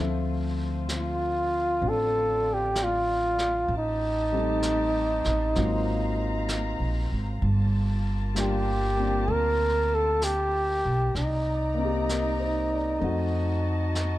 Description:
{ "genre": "jazz ballad", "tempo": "64 BPM", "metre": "4/4", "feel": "swing 68% on 8ths", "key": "D minor", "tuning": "A4 = 440 Hz", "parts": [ { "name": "warm baby grand piano", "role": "accompaniment", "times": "0.0-14.2 s", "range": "F3 to E5", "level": "-32 LUFS", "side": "left 3 dB", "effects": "none" }, { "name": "muted chamber string section", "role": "sustained chords", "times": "0.0-14.2 s", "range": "Bb3 to A#5", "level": "-39 LUFS", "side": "left 3 dB", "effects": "none" }, { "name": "upright bass", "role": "bass", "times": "0.0-14.2 s", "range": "G1 to F2", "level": "-28 LUFS", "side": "equal", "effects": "none" }, { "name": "breathy flugelhorn", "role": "melody", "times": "0.9-14.2 s", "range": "Eb4 to Bb4", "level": "-26 LUFS", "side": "equal", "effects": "none" }, { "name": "jazz brush drum kit", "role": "drums", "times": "0.9-14.2 s", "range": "brushed snare drum, hi-hat, snare drum", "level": "-38 LUFS", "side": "equal", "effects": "none" } ], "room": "light reverb", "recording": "dark, warm production", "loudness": "-24 LUFS", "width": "side -15 dB against mid", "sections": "0.0-14.2 A section", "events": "none", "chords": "0.0 Dm9; 3.7 Am7b5; 5.6 G#13; 7.4 Gm9; 11.2 Cm9; 13.0 F7b9", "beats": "0.89 1.82 2.76 | 3.69 4.62 5.55 6.49 | 7.42 8.35 9.28 10.22 | 11.15 12.09 13.02 13.95" }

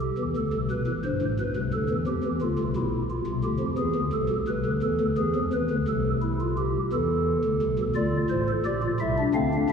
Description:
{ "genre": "classical, baroque-style 3-part fugue for pipe organ", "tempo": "58 BPM (dotted quarters)", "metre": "12/8", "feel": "straight", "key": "unclear", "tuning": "A4 = 438 Hz", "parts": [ { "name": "pipe organ, stopped flute", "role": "solo", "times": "0.0-9.7 s", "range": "G1 to F5", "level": "-24 LUFS", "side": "equal", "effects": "none" } ], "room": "wet church reverb, RT60 3.3 s", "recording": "recorded in a church or concert hall", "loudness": "-24 LUFS", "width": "side -6 dB against mid", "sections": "0.0-9.7 A section", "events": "none", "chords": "0.0 Am/C; 1.7 Bdim; 3.8 E7; 5.9 Am/C; 8.0 E7(b5, no3)", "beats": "0.69 1.73 2.77 | 3.79 4.84 5.88 6.92 | 7.95 9.00" }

